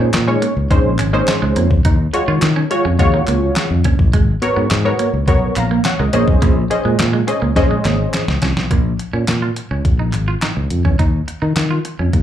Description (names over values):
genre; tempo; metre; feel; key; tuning
early-eighties boogie funk; 105 BPM; 4/4; straight; Bb minor; A4 = 440 Hz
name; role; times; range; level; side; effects
funky polysynth comp; accompaniment; 0.0-8.2 s; Ab3 to Bb5; -18 LUFS; left 1 dB; chorus, slapback echo
electric guitar at the edge of break-up; riff; 0.0-12.2 s; Ab3 to F4; -23 LUFS; right 8 dB; lush chorus, slapback echo
fingered electric bass; bass; 0.0-12.2 s; Ab1 to Eb3; -17 LUFS; left 1 dB; none
crisp 8-bit digital drum machine; drums; 0.1-12.2 s; handclaps, hi-hat, kick drum, snare drum; -17 LUFS; equal; overdrive
group handclap; percussion; 0.1-11.7 s; none; -28 LUFS; left 1 dB; slapback echo
room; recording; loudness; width
little or no reverb; live gig heard through the venue's PA, club reverb; -13 LUFS; side -10 dB against mid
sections
0.0-8.7 A section; 8.7-12.2 B section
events
drum fill 7.6-8.7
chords
0.0 Bbm11; 1.9 Ebm11; 4.1 Abm11; 6.1 Bbm11; 8.7 Bbm; 11.0 Ebsus2